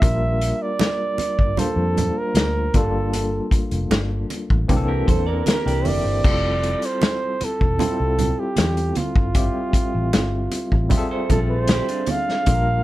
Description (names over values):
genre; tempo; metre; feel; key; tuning
lush 1970s-style soul; 77 BPM; 4/4; straight; F major; A4 = 440 Hz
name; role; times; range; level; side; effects
breathy flugelhorn; melody; 0.0-12.8 s; F4 to F5; -24 LUFS; right 2 dB; none
barky tine electric piano; accompaniment; 0.0-12.8 s; E3 to G5; -26 LUFS; left 2 dB; overdrive, fast tremolo
vintage muted fingered electric bass; bass; 0.0-12.8 s; E1 to F2; -23 LUFS; equal; none
vintage drum kit; drums; 0.0-12.7 s; crash cymbal, hi-hat, kick drum, snare drum; -21 LUFS; equal; none
congas; percussion; 0.0-12.7 s; none; -27 LUFS; right 5 dB; none
electric guitar through a small old amp; riff; 4.9-6.2, 11.1-12.4 s; D4 to D5; -29 LUFS; right 7 dB; spring reverb
room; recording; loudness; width
little or no reverb; dark, warm production; -18 LUFS; side -16 dB against mid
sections
0.0-6.2 A section; 6.2-12.8 A section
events
none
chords
0.0 Bb6; 2.7 Gm9; 4.7 C13; 6.2 Fmaj9